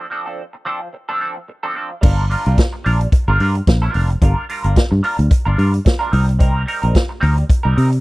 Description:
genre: disco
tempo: 110 BPM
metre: 4/4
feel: swing 56% on 16ths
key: unclear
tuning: A4 = 439 Hz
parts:
  - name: clean electric guitar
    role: accompaniment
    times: 0.0-7.9 s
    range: F3 to Bb4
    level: -22 LUFS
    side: right 2 dB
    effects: wah, lush chorus
  - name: fingered electric bass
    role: bass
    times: 2.0-8.0 s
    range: F1 to C3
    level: -15 LUFS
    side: equal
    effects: none
  - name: vintage drum kit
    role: drums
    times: 2.0-8.0 s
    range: crash cymbal, hi-hat, kick drum, snare drum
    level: -15 LUFS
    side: equal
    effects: none
room: small room ambience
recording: dry, close 1970s-style studio recording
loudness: -14 LUFS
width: side -20 dB against mid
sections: 0.0-2.0 A section; 2.0-8.0 A section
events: break 0.0-2.0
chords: 0.0 F6; 2.0 Gm7; 6.1 Cm7

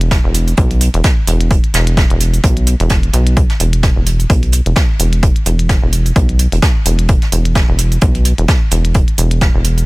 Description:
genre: minimal techno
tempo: 129 BPM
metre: 4/4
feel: swing 56% on 16ths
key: unclear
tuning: A4 = 441 Hz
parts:
  - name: rubbery square bass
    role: bass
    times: 0.0-9.8 s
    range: E1 to B1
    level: -13 LUFS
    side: equal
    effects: sidechain pumping
  - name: electronic hi-hat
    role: drums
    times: 0.0-9.9 s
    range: none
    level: -21 LUFS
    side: right 1 dB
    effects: none
  - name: electronic kick drum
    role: drums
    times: 0.1-9.5 s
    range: none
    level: -13 LUFS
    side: equal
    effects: none
  - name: jazz brush drum kit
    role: drums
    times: 0.1-9.8 s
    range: hi-hat, snare drum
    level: -23 LUFS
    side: right 2 dB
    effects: sidechain pumping on hats, high-pass filter on hats, high-pass filter on snare, high-pass filter on room
room: little or no reverb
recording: none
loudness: -10 LUFS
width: side -23 dB against mid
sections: 0.0-9.9 A section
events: none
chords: none

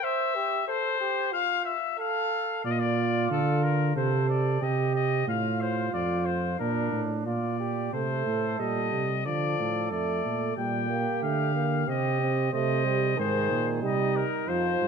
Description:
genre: classical, imitative canzona for brass ensemble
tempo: 91 BPM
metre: 4/4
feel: straight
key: unclear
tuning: A4 = 442 Hz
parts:
  - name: clear trumpet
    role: melody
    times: 0.0-14.9 s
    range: A4 to G5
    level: -30 LUFS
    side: left 9 dB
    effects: none
  - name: mellow flugelhorn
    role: second line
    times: 0.0-14.8 s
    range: D4 to C5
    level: -32 LUFS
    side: right 7 dB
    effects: none
  - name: mellow tuba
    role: bass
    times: 2.6-14.9 s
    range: F2 to D3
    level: -28 LUFS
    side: right 2 dB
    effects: none
  - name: warm euphonium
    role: accompaniment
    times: 7.9-14.9 s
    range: Eb3 to C4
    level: -30 LUFS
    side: right 3 dB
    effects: none
room: moderate scoring stage reverb, RT60 1.9 s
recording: none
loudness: -25 LUFS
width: side -6 dB against mid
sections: 0.0-7.9 A section; 7.9-14.9 B section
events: none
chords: 0.0 C; 1.3 F; 2.6 Bb; 4.0 Cm; 5.3 F/A; 6.6 Bb; 7.9 Adim; 9.2 Dm; 10.6 Gm/Bb; 11.9 Cm; 13.2 Ab

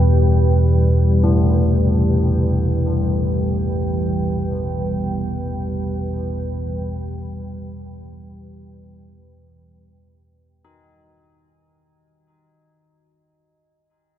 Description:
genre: dark ambient drone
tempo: free time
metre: none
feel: none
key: unclear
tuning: A4 = 440 Hz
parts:
  - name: deep dark ambient pad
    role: sustained chords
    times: 0.0-11.6 s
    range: E3 to G5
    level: -23 LUFS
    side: equal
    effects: chorus, built-in reverb
  - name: deep rumbling drone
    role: drone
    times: 0.0-11.7 s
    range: E2 to B2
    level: -19 LUFS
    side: equal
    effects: built-in reverb
  - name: carillon bells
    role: arpeggios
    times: 1.2-13.0 s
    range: A2 to D#4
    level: -26 LUFS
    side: left 1 dB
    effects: diffuse ambient delay
room: wet huge ambient reverb, RT60 7.8 s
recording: none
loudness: -17 LUFS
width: side -11 dB against mid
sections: 0.0-11.6 A section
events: fade-out 0.0-11.6; filter sweep on synth drone 0.0-11.6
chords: 0.0 Em

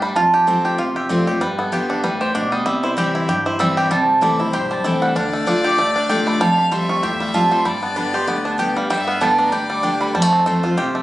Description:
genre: bluegrass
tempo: 192 BPM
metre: 4/4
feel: swing 56% on 8ths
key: C major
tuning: A4 = 440 Hz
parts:
  - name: picked steel-string acoustic guitar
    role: accompaniment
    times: 0.0-11.0 s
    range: F2 to G4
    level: -21 LUFS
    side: left 1 dB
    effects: none
  - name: bluegrass banjo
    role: arpeggios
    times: 0.0-11.0 s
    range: G3 to G4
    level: -22 LUFS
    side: equal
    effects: none
  - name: mandolin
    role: stabs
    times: 0.0-11.0 s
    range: F4 to D6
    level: -20 LUFS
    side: right 2 dB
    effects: none
  - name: upright bass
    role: bass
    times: 0.2-11.0 s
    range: A1 to G2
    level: -31 LUFS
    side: equal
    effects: none
  - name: rich fiddle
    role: second line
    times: 3.9-11.0 s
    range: C5 to F5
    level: -26 LUFS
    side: left 4 dB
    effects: none
room: wet studio reverb, RT60 0.6 s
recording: recorded on a phone in the room, club reverb, nothing above 10.9 kHz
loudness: -16 LUFS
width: side -15 dB against mid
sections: 0.0-3.9 A section; 3.9-11.0 A section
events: mandolin solo 0.0-11.0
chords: 0.2 F; 1.4 G; 2.7 C; 3.9 C6; 5.2 Dm; 6.4 Fadd9; 7.7 G; 8.9 Gadd9; 10.2 F

